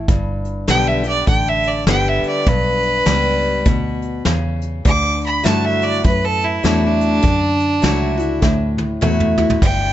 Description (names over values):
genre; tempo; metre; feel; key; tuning
honky-tonk and classic country; 101 BPM; 4/4; swing 60% on 8ths; unclear; A4 = 439 Hz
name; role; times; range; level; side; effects
picked steel-string acoustic guitar; accompaniment; 0.0-9.9 s; G2 to G4; -20 LUFS; left 2 dB; none
fingered electric bass; bass; 0.0-9.9 s; G1 to G2; -21 LUFS; equal; none
soft brush drum kit; drums; 0.1-9.8 s; hi-hat, kick drum, ride cymbal, snare drum, toms; -18 LUFS; equal; none
clear fiddle; melody; 0.7-9.9 s; D4 to D6; -19 LUFS; right 1 dB; none
room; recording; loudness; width
light reverb; dark, warm production, nothing above 7.9 kHz; -14 LUFS; side -12 dB against mid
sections
0.0-9.6 A section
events
fiddle solo 0.0-9.6; drum fill 8.4-9.6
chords
0.1 G; 4.9 Dadd9